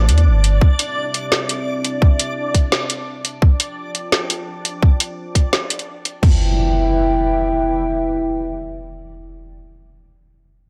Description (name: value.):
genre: half-time drum and bass.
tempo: 171 BPM.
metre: 4/4.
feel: half-time.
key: E phrygian.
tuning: A4 = 440 Hz.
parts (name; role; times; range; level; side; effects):
dark analog pad; sustained chords; 0.0-9.5 s; A3 to A5; -26 LUFS; equal; subtle chorus, sidechain pumping.
saturated sub bass; bass; 0.0-0.6 s; G1 to E2; -14 LUFS; equal; tube saturation.
backwards swelling texture; texture; 0.0-6.2 s; D4 to D5; -30 LUFS; equal; built-in reverb, analog chorus.
drum and bass drum kit; drums; 0.1-6.1 s; hi-hat, snare drum; -21 LUFS; equal; none.
drum and bass drum kit; drums; 0.6-6.3 s; crash cymbal, kick drum, toms; -16 LUFS; equal; none.
impact; sound effects; 6.2-9.6 s; none; -24 LUFS; equal; none.
room: light reverb, digital ambience.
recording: none.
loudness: -18 LUFS.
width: mono.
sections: 0.0-6.2 A section; 6.2-9.0 B section.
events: filter sweep on analog synth pad 0.0-6.2.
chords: 0.0 Amadd9; 0.6 C; 3.4 F; 6.2 Em.